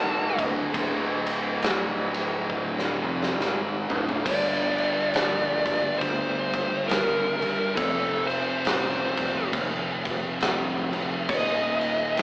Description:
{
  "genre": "stoner and doom metal",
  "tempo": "68 BPM",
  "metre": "4/4",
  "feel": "swing 59% on 8ths",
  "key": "unclear",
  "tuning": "A4 = 440 Hz",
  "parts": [
    { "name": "fuzz lead guitar", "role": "melody", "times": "0.0-12.2 s", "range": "A4 to A5", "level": "-26 LUFS", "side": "equal", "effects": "distortion" },
    { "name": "thick fuzz guitar", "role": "riff", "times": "0.0-12.2 s", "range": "D2 to G#3", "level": "-32 LUFS", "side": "left 1 dB", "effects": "distortion" },
    { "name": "thick fuzz guitar", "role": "riff", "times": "0.0-12.2 s", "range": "D2 to G#3", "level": "-34 LUFS", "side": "right 1 dB", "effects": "distortion" },
    { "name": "fuzz fingered electric bass", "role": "bass", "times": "0.0-12.2 s", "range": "D1 to Eb2", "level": "-34 LUFS", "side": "equal", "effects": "overdrive" },
    { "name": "big rock drum kit", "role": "drums", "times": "0.4-12.2 s", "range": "crash cymbal, kick drum, ride cymbal, snare drum, toms", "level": "-26 LUFS", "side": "equal", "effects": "none" }
  ],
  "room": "moderate large studio reverb, RT60 0.8 s",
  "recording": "band playing live in one room, AM radio sound",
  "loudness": "-23 LUFS",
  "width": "side -22 dB against mid",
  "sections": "0.0-4.3 A section; 4.3-12.2 B section",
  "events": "lead electric guitar solo 0.0-4.3; drum fill 2.5-4.3",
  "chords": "0.0 Dm; 4.3 Gm; 7.8 F5; 11.3 Eb5",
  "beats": "| 0.74 1.62 2.50 3.38 | 4.26 5.14 6.02 6.90 | 7.78 8.65 9.54 10.41 | 11.29 12.17"
}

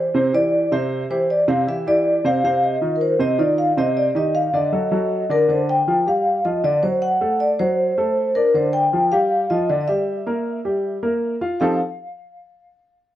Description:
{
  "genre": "jazz",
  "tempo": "157 BPM",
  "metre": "4/4",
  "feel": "straight",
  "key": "unclear",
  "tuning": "A4 = 442 Hz",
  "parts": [
    { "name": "vibraphone with medium mallets", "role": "melody", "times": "0.0-11.8 s", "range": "Bb4 to G5", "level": "-19 LUFS", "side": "left 1 dB", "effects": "analog delay" },
    { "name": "warm upright piano", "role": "accompaniment", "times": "0.0-11.8 s", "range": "C3 to F5", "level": "-21 LUFS", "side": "right 1 dB", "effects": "none" }
  ],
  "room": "moderate studio reverb, RT60 0.5 s",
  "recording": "cassette tape",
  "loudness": "-17 LUFS",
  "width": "side -12 dB against mid",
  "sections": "0.0-5.5 A section; 5.5-11.6 B section; 11.6-13.1 C section",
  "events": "none",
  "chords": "0.0 Cadd9; 2.4 F5; 4.0 Cmadd9; 4.7 D; 5.5 G5; 7.0 D7; 8.5 G5; 10.1 Gm6; 11.6 F9",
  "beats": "0.14 0.53 | 0.91 1.29 1.67 2.05 | 2.43 2.81 3.20 3.58 | 3.96 4.34 4.72 5.11 | 5.49 5.87 6.25 6.63 | 7.01 7.40 7.78 8.16 | 8.54 8.92 9.31 9.69 | 10.07 10.45 10.84 11.22 | 11.60"
}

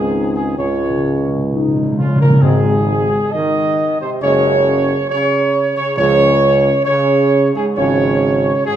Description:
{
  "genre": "classical",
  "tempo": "67 BPM",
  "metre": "4/4",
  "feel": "straight",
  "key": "Db major",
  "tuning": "A4 = 440 Hz",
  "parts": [
    { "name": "mellow trumpet section", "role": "melody", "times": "0.0-8.8 s", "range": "F4 to Eb5", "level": "-16 LUFS", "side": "right 1 dB", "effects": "none" },
    { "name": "dark French horn section", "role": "sustained chords", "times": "0.0-8.1 s", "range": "F3 to F4", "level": "-23 LUFS", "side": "left 5 dB", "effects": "none" },
    { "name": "mellow trombone section", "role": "sustained chords", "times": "0.0-8.8 s", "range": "F2 to Ab3", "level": "-19 LUFS", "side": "right 2 dB", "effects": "none" },
    { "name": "clear tuba", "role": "bass", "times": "0.0-8.5 s", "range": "Gb1 to Db2", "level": "-20 LUFS", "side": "right 2 dB", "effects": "none" },
    { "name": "timpani", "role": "percussion", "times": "0.0-7.3 s", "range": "Ab2 to Db3", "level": "-17 LUFS", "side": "equal", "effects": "none" }
  ],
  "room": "wet recital hall reverb, RT60 1.6 s",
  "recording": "minimal, uncompressed stereo recording",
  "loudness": "-12 LUFS",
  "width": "side -10 dB against mid",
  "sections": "0.0-2.4 A section; 2.4-8.8 B section",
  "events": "timpani fill 0.6-2.4",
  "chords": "0.0 Ab/Db; 0.6 Db; 2.4 Ab; 4.2 Gbsus2; 6.0 Db",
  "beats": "0.59 1.51 | 2.42 3.33 4.21 5.09 | 5.97 6.86 7.77 8.66"
}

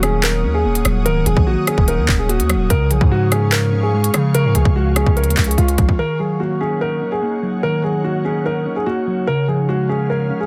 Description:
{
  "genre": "hip hop, drill",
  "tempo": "146 BPM",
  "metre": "4/4",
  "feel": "half-time",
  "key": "Eb minor",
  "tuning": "A4 = 440 Hz",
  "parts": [
    { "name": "dark concert grand piano", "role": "melody", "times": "0.0-10.5 s", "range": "F4 to Bb4", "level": "-23 LUFS", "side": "equal", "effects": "none" },
    { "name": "mellow electric guitar", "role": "accompaniment", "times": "0.0-10.5 s", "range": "Db3 to Db5", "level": "-23 LUFS", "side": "equal", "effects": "none" },
    { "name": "ethereal airy pad", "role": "sustained chords", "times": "0.0-10.5 s", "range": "Db4 to Eb6", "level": "-33 LUFS", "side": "equal", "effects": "ensemble chorus, built-in reverb" },
    { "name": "distorted 808-style bass", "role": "bass", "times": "0.0-6.0 s", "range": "Db1 to Db3", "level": "-20 LUFS", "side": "equal", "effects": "distortion" },
    { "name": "drill drum kit", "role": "drums", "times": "0.0-6.0 s", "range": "handclaps, hi-hat, kick drum, rim click", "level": "-19 LUFS", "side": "equal", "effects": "none" }
  ],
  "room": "little or no reverb",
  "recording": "dense, heavily limited modern master",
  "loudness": "-17 LUFS",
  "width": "mono",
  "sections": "0.0-6.0 A section; 6.0-10.5 B section",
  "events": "drum fill 5.6-6.0",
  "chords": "0.0 Ebm7; 2.7 Db; 6.0 Ebm7; 9.3 Db",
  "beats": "0.24 0.65 | 1.06 1.47 1.88 2.29 | 2.70 3.11 3.52 3.93 | 4.34 4.76 5.17 5.58 | 5.99 6.40 6.81 7.22 | 7.63 8.04 8.46 8.87 | 9.28 9.69 10.10"
}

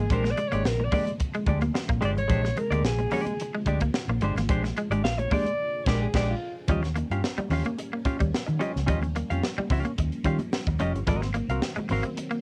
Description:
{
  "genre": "funk",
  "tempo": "109 BPM",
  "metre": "4/4",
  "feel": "straight",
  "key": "unclear",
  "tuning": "A4 = 440 Hz",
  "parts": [
    { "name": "breathy alto saxophone", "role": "melody", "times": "0.0-6.5 s", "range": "F4 to F5", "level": "-32 LUFS", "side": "equal", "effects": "cassette tape" },
    { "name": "semi-hollow electric guitar", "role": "accompaniment", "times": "0.0-12.2 s", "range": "Ab3 to F5", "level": "-32 LUFS", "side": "equal", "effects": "subtle chorus, cassette tape" },
    { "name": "string machine, full ensemble", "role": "sustained chords", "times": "0.0-12.4 s", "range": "C3 to Db4", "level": "-42 LUFS", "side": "equal", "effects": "none" },
    { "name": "clean electric guitar", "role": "riff", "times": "0.0-12.4 s", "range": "F3 to Bb3", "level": "-34 LUFS", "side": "equal", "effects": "tube saturation, cassette tape" },
    { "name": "vintage muted fingered electric bass", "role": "bass", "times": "0.0-12.0 s", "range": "F1 to Eb3", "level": "-30 LUFS", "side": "equal", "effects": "none" },
    { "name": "crisp fusion drum kit", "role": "drums", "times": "0.1-12.4 s", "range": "crash cymbal, hi-hat, kick drum, snare drum", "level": "-32 LUFS", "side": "equal", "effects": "cassette tape" },
    { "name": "congas", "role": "percussion", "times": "0.1-12.3 s", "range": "none", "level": "-39 LUFS", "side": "equal", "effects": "none" }
  ],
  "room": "moderate booth ambience, RT60 0.2 s",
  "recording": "home recording on cassette",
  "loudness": "-27 LUFS",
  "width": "mono",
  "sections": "0.0-6.7 A section; 6.7-12.4 B section",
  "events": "alto saxophone solo 0.0-6.7; band accent 5.6-6.7",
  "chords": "0.0 Bb13; 6.7 Eb9; 11.1 Ab9",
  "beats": "| 0.10 0.65 1.20 1.75 | 2.30 2.85 3.39 3.94 | 4.49 5.04 5.59 6.13 | 6.68 7.23 7.78 8.33 | 8.88 9.43 9.97 10.52 | 11.07 11.62 12.17"
}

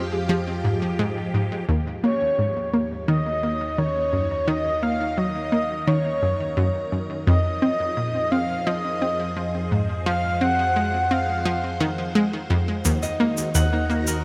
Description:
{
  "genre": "ambient, sequencer-driven space music",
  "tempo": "86 BPM",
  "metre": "4/4",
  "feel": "straight",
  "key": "Eb dorian",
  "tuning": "A4 = 442 Hz",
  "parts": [
    { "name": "breathy flute-like synth lead", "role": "melody", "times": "0.0-11.8 s", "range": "Db5 to Gb5", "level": "-28 LUFS", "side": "equal", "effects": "analog chorus, delay" },
    { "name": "phased string machine", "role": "sustained chords", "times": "0.0-14.2 s", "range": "Eb3 to Bb5", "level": "-34 LUFS", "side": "equal", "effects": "ensemble chorus, phaser" },
    { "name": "analog pluck", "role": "riff", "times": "0.0-14.1 s", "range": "Eb2 to C4", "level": "-26 LUFS", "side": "equal", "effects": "chorus, delay" },
    { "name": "analog drone", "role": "bass", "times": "0.0-14.2 s", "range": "Eb2 to F2", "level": "-35 LUFS", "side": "equal", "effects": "chorus" },
    { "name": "cabasa", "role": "percussion", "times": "12.8-14.2 s", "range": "none", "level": "-32 LUFS", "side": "equal", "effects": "delay" },
    { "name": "concert harp", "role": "arpeggios", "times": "13.0-14.2 s", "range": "Eb4 to Gb5", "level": "-29 LUFS", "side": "equal", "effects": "delay" }
  ],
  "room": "wet huge ambient reverb, RT60 8.2 s",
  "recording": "none",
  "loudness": "-23 LUFS",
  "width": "mono",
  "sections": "0.0-1.7 A section; 1.7-14.2 B section",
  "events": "fade-in on string machine 1.7-14.2; fade-in on synth drone 1.7-14.2",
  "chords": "0.0 Fmadd9; 1.7 Ebm; 7.3 Fm; 12.9 Ebm",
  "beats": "0.29 0.99 | 1.69 2.39 3.08 3.78 | 4.48 5.18 5.88 6.57 | 7.27 7.97 8.66 9.36 | 10.06 10.76 11.46 12.15 | 12.85 13.55"
}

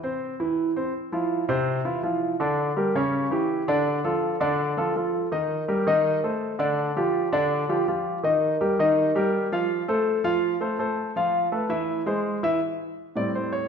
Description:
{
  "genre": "jazz",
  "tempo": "164 BPM",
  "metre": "4/4",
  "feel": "straight",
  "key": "unclear",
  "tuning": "A4 = 440 Hz",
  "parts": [
    { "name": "warm grand piano", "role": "solo", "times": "0.0-13.7 s", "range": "A2 to F5", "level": "-22 LUFS", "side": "equal", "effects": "none" }
  ],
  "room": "wet recital hall reverb, RT60 1.4 s",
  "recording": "recorded in a church or concert hall",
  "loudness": "-22 LUFS",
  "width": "side -6 dB against mid",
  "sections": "0.9-12.6 A section; 12.6-13.7 B section",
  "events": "grand piano solo 12.6-13.7",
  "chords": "0.0 C; 0.9 F5; 2.4 Gm; 3.1 C#dim; 3.9 Dm; 5.3 D#; 6.1 Cm69; 6.8 Dmadd11; 8.2 D#; 9.7 F; 11.2 Fmaj7#11; 11.9 Eaug; 12.6 Am7",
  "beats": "0.21 0.57 | 0.94 1.30 1.67 2.04 | 2.40 2.77 3.13 3.50 | 3.86 4.23 4.59 4.96 | 5.32 5.69 6.05 6.42 | 6.78 7.15 7.51 7.88 | 8.24 8.61 8.97 9.34 | 9.70 10.06 10.43 10.79 | 11.16 11.52 11.89 12.25 | 12.62 12.98 13.35"
}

